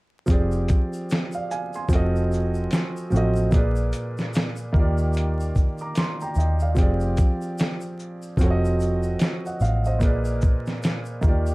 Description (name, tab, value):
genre	lo-fi hip hop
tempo	74 BPM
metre	4/4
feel	swing 60% on 16ths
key	F dorian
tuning	A4 = 440 Hz
part	warm upright piano	accompaniment	0.3-11.5 s	Bb2 to D6	-26 LUFS	right 1 dB	cassette tape, low-pass filter
part	picked electric bass	bass	0.3-11.5 s	F1 to Eb2	-23 LUFS	equal	none
part	dusty soul sampler-style drum kit	drums	0.3-11.5 s	hi-hat, kick drum, shaker, snare drum	-21 LUFS	equal	vintage 12-bit sampler grit
part	tube shaker	percussion	0.3-11.5 s	none	-49 LUFS	left 3 dB	none
room	light reverb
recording	vinyl crackle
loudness	-20 LUFS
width	side -22 dB against mid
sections	0.3-11.5 A section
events	none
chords	0.3 Fm69; 1.9 F7b9; 3.5 Bb7b9; 4.7 Ebmaj9; 6.8 Fm69; 8.4 F7b9; 10.0 Bb7b9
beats	| 0.28 1.09 1.90 2.71 | 3.52 4.33 5.14 5.96 | 6.77 7.58 8.39 9.20 | 10.01 10.82